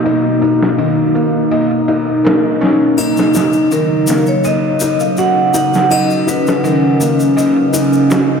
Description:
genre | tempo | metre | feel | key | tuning
trip hop | 82 BPM | 4/4 | straight | Eb minor | A4 = 441 Hz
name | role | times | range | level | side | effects
warbly tape-like pad | sustained chords | 0.0-8.4 s | B2 to D#4 | -14 LUFS | equal | chorus, built-in reverb
felt-muted upright piano | arpeggios | 0.0-8.4 s | D#3 to D#5 | -17 LUFS | left 2 dB | low-pass filter, analog delay
trip hop sampler-style drum kit | drums | 0.1-8.3 s | hi-hat, ride cymbal, snare drum | -21 LUFS | equal | overdrive, low-pass filter on cymbals, low-pass filter on snare, low-pass filter on hats, low-pass filter on room
triangle and egg shaker | percussion | 3.0-8.3 s | none | -25 LUFS | left 5 dB | none
vibraphone with medium hard mallets | melody | 3.7-7.3 s | Bb4 to Gb5 | -17 LUFS | right 2 dB | tape echo
room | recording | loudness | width
wet cathedral reverb, RT60 4.9 s | dreamy mix soaked in reverb | -11 LUFS | side -6 dB against mid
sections
0.0-8.4 A section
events
none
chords
0.0 Bmaj7; 3.0 Ebm7

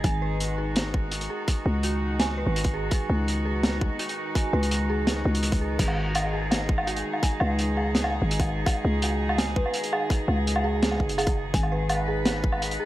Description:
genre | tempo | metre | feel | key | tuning
half-time drum and bass | 167 BPM | 4/4 | half-time | G# minor | A4 = 440 Hz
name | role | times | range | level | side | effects
warm symphonic cello section | sustained chords | 0.0-12.9 s | D#3 to B4 | -31 LUFS | equal | sidechain pumping
dark detuned synth bell | arpeggios | 0.0-12.9 s | F#4 to G#5 | -33 LUFS | right 2 dB | chorus, phaser, analog delay
growling 808-style bass | bass | 0.0-12.8 s | F#1 to C#2 | -26 LUFS | equal | none
crunchy breakbeat drum kit | drums | 0.0-12.8 s | crash cymbal, hi-hat, snare drum, woodblock | -28 LUFS | equal | none
electronic kick drum | drums | 0.0-12.5 s | none | -25 LUFS | equal | overdrive
room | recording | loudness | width
light reverb, small room ambience | dry, gritty hardware recording | -23 LUFS | side -15 dB against mid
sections
0.0-12.9 A section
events
none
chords
0.0 G#5

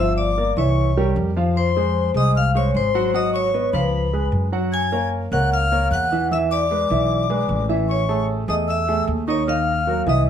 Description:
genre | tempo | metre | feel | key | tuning
jazz | 152 BPM | 4/4 | straight | unclear | A4 = 438 Hz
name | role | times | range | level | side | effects
vibraphone with medium hard mallets | melody | 0.0-10.3 s | Cb5 to Ab5 | -23 LUFS | left 3 dB | none
breathy bright jazz flute | second line | 0.0-10.3 s | Cb6 to Ab6 | -26 LUFS | left 3 dB | none
clear grand piano | accompaniment | 0.0-10.3 s | Eb3 to Gb5 | -23 LUFS | right 2 dB | none
upright bass | bass | 0.0-10.3 s | G1 to Gb2 | -22 LUFS | equal | none
room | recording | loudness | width
moderate club reverb, RT60 0.8 s | none | -18 LUFS | side -9 dB against mid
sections
0.0-10.3 A section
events
none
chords
0.0 Gm7; 0.8 C7b9; 1.6 Fm; 3.1 Abm7; 3.9 Db7; 4.7 Gbmaj7; 6.3 E7; 7.9 Amaj7; 9.5 Ebmadd9

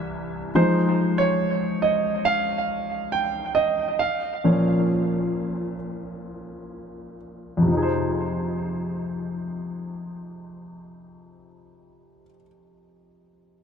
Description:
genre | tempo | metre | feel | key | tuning
pop | 61-70 BPM | 4/4 | straight | F minor | A4 = 440 Hz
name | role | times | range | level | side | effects
clear concert grand piano | accompaniment | 0.0-13.6 s | C2 to G5 | -22 LUFS | right 1 dB | analog delay
room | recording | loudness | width
moderate spring reverb, RT60 1.2 s | echo-heavy mix | -21 LUFS | side -7 dB against mid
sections
0.5-7.7 A section; 7.7-11.6 B section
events
slowing down 0.5-7.7; grand piano solo 0.5-7.7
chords
0.0 C; 0.5 Fm7; 4.0 Bbm; 7.7 Fm7

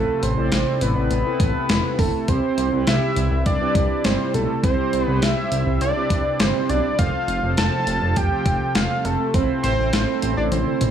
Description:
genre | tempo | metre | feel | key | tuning
synth-pop | 102 BPM | 4/4 | straight | C major | A4 = 445 Hz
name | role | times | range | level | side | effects
fat analog lead | melody | 0.0-10.9 s | A4 to A5 | -23 LUFS | right 1 dB | chorus, tape echo
analog synth brass | accompaniment | 0.0-10.9 s | C4 to D5 | -27 LUFS | right 2 dB | chorus
phased analog pad | sustained chords | 0.0-10.9 s | C3 to F4 | -28 LUFS | equal | phaser, chorus
chorused synth bass | bass | 0.0-10.9 s | E1 to C2 | -23 LUFS | equal | none
clean 12-bit digital drum machine | drums | 0.2-10.9 s | hi-hat, kick drum, snare drum, toms | -23 LUFS | equal | gated reverb
room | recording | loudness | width
light reverb | small room ambience | -18 LUFS | side -9 dB against mid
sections
0.0-10.9 A section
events
drum fill 10.5-10.9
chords
0.0 Amadd9; 2.3 Cmaj7; 7.0 F; 9.3 Amadd9

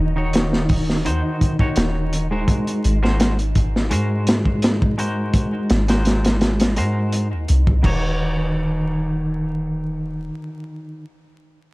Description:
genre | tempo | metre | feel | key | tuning
trip hop | 84 BPM | 4/4 | straight | Eb dorian | A4 = 440 Hz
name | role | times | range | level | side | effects
semi-hollow electric guitar | accompaniment | 0.0-11.1 s | Eb3 to Db5 | -23 LUFS | equal | harmonic tremolo, tape echo
soft 808-style bass | bass | 0.0-10.3 s | Eb1 to Ab2 | -22 LUFS | equal | none
flickering grainy texture | texture | 0.0-8.2 s | Eb4 | -32 LUFS | equal | built-in reverb
crunchy breakbeat drum kit | drums | 0.3-8.0 s | crash cymbal, hi-hat, kick drum, snare drum | -20 LUFS | equal | none
room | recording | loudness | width
small room reverb | dry, gritty hardware recording, vinyl crackle | -17 LUFS | side -22 dB against mid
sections
0.0-8.2 A section; 8.2-11.1 B section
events
none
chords
0.0 Ebm7; 2.5 Ab9; 7.8 Ebm7

